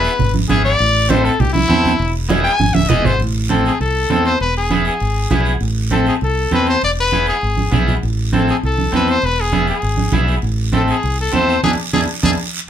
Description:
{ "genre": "latin, cumbia", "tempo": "199 BPM", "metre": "4/4", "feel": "straight", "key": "A harmonic minor", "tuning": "A4 = 440 Hz", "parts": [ { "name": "brilliant trumpet", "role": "melody", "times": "0.0-12.3 s", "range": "E4 to G#5", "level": "-18 LUFS", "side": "left 3 dB", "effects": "none" }, { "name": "electric guitar at the edge of break-up", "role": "accompaniment", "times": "0.0-12.3 s", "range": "B3 to A4", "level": "-20 LUFS", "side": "equal", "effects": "none" }, { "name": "fingered electric bass", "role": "bass", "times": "0.0-12.3 s", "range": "D1 to E2", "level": "-19 LUFS", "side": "equal", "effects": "none" }, { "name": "guiro", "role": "percussion", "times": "0.0-12.3 s", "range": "none", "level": "-29 LUFS", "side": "right 5 dB", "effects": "none" }, { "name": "congas", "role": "percussion", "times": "0.2-12.3 s", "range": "none", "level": "-19 LUFS", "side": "right 4 dB", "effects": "none" } ], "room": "wet small room ambience, RT60 0.5 s", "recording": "band playing live in one room", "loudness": "-14 LUFS", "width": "side -9 dB against mid", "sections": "0.0-3.2 A section; 3.2-12.7 B section", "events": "trumpet solo 0.0-3.2; drum fill 2.6-3.2, 12.4-12.7; band accent 11.6-12.7", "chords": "0.0 E; 0.8 Am; 2.0 E; 3.2 Am; 4.4 E; 5.6 Am; 6.8 E; 8.0 Am; 9.2 E; 10.4 Am; 11.6 E7" }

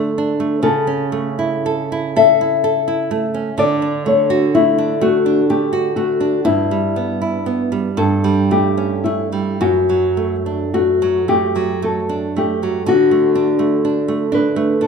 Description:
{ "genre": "romantic duo for nylon-string guitar and classical guitar", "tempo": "35-44 BPM (dotted quarters)", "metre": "6/8", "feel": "rubato", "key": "D major", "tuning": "A4 = 440 Hz", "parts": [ { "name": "nylon-string guitar", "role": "accompaniment", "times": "0.0-14.9 s", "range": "F#2 to A4", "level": "-18 LUFS", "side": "right 4 dB", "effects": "none" }, { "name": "nylon-string guitar", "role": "melody", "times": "0.6-14.9 s", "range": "E4 to E5", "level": "-17 LUFS", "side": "left 5 dB", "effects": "none" } ], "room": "moderate recital hall reverb, RT60 1.5 s", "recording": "minimal, uncompressed stereo recording", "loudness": "-14 LUFS", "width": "side -5 dB against mid", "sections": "0.0-12.9 A section; 12.9-14.9 A section", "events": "none", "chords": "0.0 D5; 0.7 A/C#; 3.6 D; 6.5 Em/G; 8.0 A7/G; 9.6 D/F#; 12.9 D" }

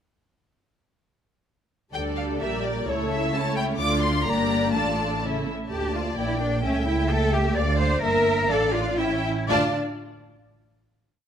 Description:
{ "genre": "quick classical-period movement for string orchestra", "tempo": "128 BPM", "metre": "2/4", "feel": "straight", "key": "D minor", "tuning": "A4 = 439 Hz", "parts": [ { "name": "rich symphonic violin section", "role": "melody", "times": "1.9-9.8 s", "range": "C#5 to D6", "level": "-30 LUFS", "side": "left 2 dB", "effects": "none" }, { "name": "warm symphonic violin section", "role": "second line", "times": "1.9-9.8 s", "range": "E4 to E5", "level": "-30 LUFS", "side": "left 2 dB", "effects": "none" }, { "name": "warm symphonic viola section", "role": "accompaniment", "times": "1.9-9.8 s", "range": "G3 to G4", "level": "-28 LUFS", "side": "equal", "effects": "none" }, { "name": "rich symphonic double bass section", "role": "bass", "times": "1.9-9.8 s", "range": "G1 to D2", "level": "-28 LUFS", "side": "right 2 dB", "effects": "none" }, { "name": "warm symphonic cello section", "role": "bass", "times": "1.9-9.8 s", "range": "G2 to D5", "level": "-27 LUFS", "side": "equal", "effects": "none" } ], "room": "moderate recital hall reverb, RT60 1.4 s", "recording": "none", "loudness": "-22 LUFS", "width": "side -8 dB against mid", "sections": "1.9-5.7 A section; 5.7-9.5 A section; 9.5-10.5 final chord", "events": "slowing down 7.1-9.5", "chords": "1.9 D5; 2.4 Gm/Bb; 2.9 A/C#; 3.8 Dm; 4.3 Gm; 4.7 Dm/A; 5.2 A; 5.7 Dm; 6.2 Gm/Bb; 6.6 A7/C#; 7.6 Dm; 8.0 Edim/G; 8.5 Dm/A; 9.0 A7; 9.5 Dm" }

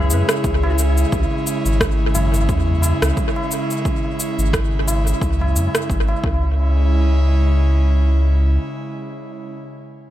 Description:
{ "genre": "organic downtempo", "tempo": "88 BPM", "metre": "4/4", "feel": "swing 56% on 16ths", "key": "C# minor pentatonic", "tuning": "A4 = 437 Hz", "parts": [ { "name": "clean lap steel guitar", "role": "melody", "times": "0.0-0.7 s", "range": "G#4", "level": "-28 LUFS", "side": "left 4 dB", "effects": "analog delay" }, { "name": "airy breathy pad", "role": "sustained chords", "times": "0.0-9.5 s", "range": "C#3 to E4", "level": "-24 LUFS", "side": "right 1 dB", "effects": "chorus, sidechain pumping" }, { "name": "warm sub bass", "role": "bass", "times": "0.0-8.6 s", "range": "G#1 to F#2", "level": "-16 LUFS", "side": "equal", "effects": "tube saturation, sidechain pumping" }, { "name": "electronic cabasa and rim click", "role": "drums", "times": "0.1-6.1 s", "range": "none", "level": "-24 LUFS", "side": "equal", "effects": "overdrive, small room reverb, tape echo" }, { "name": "electronic kick drum", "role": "drums", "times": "0.4-6.4 s", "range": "none", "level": "-23 LUFS", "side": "equal", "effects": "overdrive, small room reverb" }, { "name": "tabla", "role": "percussion", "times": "0.6-6.5 s", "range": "none", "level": "-28 LUFS", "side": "left 1 dB", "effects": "tape echo" } ], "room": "light reverb", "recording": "echo-heavy mix", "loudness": "-16 LUFS", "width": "side -13 dB against mid", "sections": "0.0-6.6 A section; 6.6-9.3 B section", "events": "filter sweep on sub bass 0.0-6.6", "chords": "0.0 C#m" }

